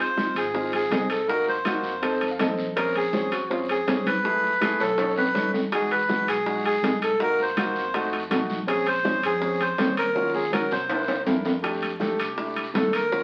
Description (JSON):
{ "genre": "Afro-Cuban jazz", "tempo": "162 BPM", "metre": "4/4", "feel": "straight", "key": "unclear", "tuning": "A4 = 440 Hz", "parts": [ { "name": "melodica", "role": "melody", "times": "0.0-13.2 s", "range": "F4 to C5", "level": "-27 LUFS", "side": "equal", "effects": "none" }, { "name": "warm concert grand piano", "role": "accompaniment", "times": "0.0-13.2 s", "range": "Gb3 to A5", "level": "-32 LUFS", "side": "equal", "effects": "none" }, { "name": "upright bass", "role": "bass", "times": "0.0-13.2 s", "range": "Ab1 to Gb2", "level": "-42 LUFS", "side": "equal", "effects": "none" }, { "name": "timbales", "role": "percussion", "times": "0.0-13.1 s", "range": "none", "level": "-31 LUFS", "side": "equal", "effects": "none" }, { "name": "bongos", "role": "percussion", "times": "0.2-13.2 s", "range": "none", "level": "-38 LUFS", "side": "equal", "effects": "none" }, { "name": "congas", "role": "percussion", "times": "0.2-13.2 s", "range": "none", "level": "-35 LUFS", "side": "equal", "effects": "none" }, { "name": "guiro", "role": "percussion", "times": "0.2-13.2 s", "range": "none", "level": "-42 LUFS", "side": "equal", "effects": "none" } ], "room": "wet studio reverb, RT60 0.6 s", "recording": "very old 78 rpm record, vinyl crackle", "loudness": "-24 LUFS", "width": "mono", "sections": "0.0-11.6 A section; 11.6-13.2 B section", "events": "grand piano fill 2.0-2.8; drum fill 4.8-5.7, 10.2-11.6; melodica solo 11.6-13.2", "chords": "0.0 Dbmaj9; 1.3 Cm7b5; 2.0 F7; 2.8 Bbm9; 4.2 Gbm7; 5.0 Cb9; 5.7 Emaj9; 7.2 Cm7b5; 7.9 F7b9; 8.7 Bbm9; 10.2 Ebm7; 10.9 C7; 11.6 F6" }